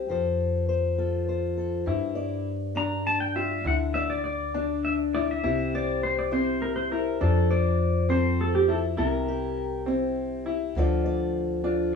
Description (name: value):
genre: acoustic folk duo or small band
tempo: 68 BPM (dotted quarters)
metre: 6/8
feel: straight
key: G dorian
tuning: A4 = 438 Hz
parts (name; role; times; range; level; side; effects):
- fingerpicked acoustic archtop guitar; accompaniment; 0.0-12.0 s; G2 to D5; -29 LUFS; left 3 dB; none
- upright bass; bass; 0.0-12.0 s; C2 to G2; -29 LUFS; left 1 dB; none
- clear upright piano; arpeggios; 1.9-12.0 s; C4 to F4; -29 LUFS; left 2 dB; none
- pedal steel guitar; melody; 2.8-9.8 s; G4 to Bb5; -28 LUFS; equal; none
room: moderate studio reverb, RT60 0.6 s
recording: band playing live in one room, small room ambience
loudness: -24 LUFS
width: side -6 dB against mid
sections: 0.0-1.9 A section; 1.9-12.0 B section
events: pedal steel guitar solo 1.9-12.0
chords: 0.1 F; 1.9 G5; 3.7 Dsus2; 5.4 C; 7.2 F; 9.0 C; 10.8 Dm